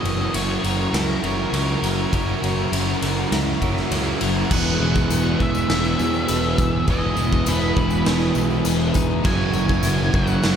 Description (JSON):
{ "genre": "rock, shoegaze and dream pop", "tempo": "101 BPM", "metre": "4/4", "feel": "straight", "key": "E lydian", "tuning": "A4 = 440 Hz", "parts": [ { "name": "octave-fuzz lead guitar", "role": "melody", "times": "0.0-10.6 s", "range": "A#4 to G#5", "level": "-29 LUFS", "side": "equal", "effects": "distortion, diffuse ambient delay" }, { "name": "hollow soft pad", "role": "sustained chords", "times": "0.0-10.6 s", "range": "A#4 to D#6", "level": "-32 LUFS", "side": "equal", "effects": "chorus" }, { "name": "twelve-string electric guitar", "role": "arpeggios", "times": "0.0-10.6 s", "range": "F#3 to B4", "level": "-31 LUFS", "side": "left 3 dB", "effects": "lush chorus, diffuse ambient delay" }, { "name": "cranked stack guitar", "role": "riff", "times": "0.0-10.6 s", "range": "E3 to A#4", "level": "-25 LUFS", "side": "right 8 dB", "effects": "overdrive, reverse reverb" }, { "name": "thick fuzz guitar", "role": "riff", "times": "0.0-10.6 s", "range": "E2 to F#3", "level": "-26 LUFS", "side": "left 7 dB", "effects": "distortion, ensemble chorus" }, { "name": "fuzz picked electric bass", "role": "bass", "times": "0.0-10.6 s", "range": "E1 to E2", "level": "-24 LUFS", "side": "equal", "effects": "overdrive" }, { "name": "raw garage drum kit", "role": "drums", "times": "0.1-10.6 s", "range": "crash cymbal, kick drum, ride cymbal, snare drum", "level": "-24 LUFS", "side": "equal", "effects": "none" }, { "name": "tambourine", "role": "percussion", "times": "4.5-10.5 s", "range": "none", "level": "-37 LUFS", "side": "left 8 dB", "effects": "none" } ], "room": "wet cathedral reverb, RT60 4.8 s", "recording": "dreamy mix soaked in reverb", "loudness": "-18 LUFS", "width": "side -8 dB against mid", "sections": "0.0-4.5 A section; 4.5-10.6 B section", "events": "none", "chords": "0.0 F#7; 4.5 Emaj7; 9.3 F#7", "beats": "0.35 0.94 1.54 | 2.13 2.73 3.32 3.92 | 4.51 5.10 5.70 6.29 | 6.88 7.47 8.06 8.66 | 9.25 9.85 10.44" }